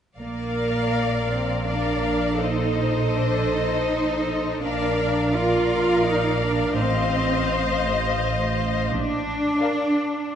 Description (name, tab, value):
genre	classical, slow romantic movement for string orchestra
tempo	83 BPM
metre	3/4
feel	uneven beats, rubato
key	Bb major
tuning	A4 = 440 Hz
part	rich symphonic violin section	melody	0.2-10.2 s	Eb5 to F5	-30 LUFS	left 6 dB	none
part	warm symphonic violin section	second line	0.2-10.2 s	C5 to Eb5	-28 LUFS	left 4 dB	none
part	rich chamber viola section	accompaniment	0.2-10.2 s	A4 to C5	-27 LUFS	equal	none
part	rich studio double bass section	bass	0.2-9.5 s	A1 to Bb1	-27 LUFS	right 2 dB	none
part	rich symphonic cello section	bass	0.2-10.3 s	Bb3 to F4	-25 LUFS	right 2 dB	none
room	wet scoring stage reverb, RT60 2.1 s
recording	nothing above 10.8 kHz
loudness	-20 LUFS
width	side -8 dB against mid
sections	0.2-10.4 A section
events	none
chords	0.2 Bb; 2.4 Adim/Bb; 4.6 Bb; 6.8 F7/A; 8.9 Bb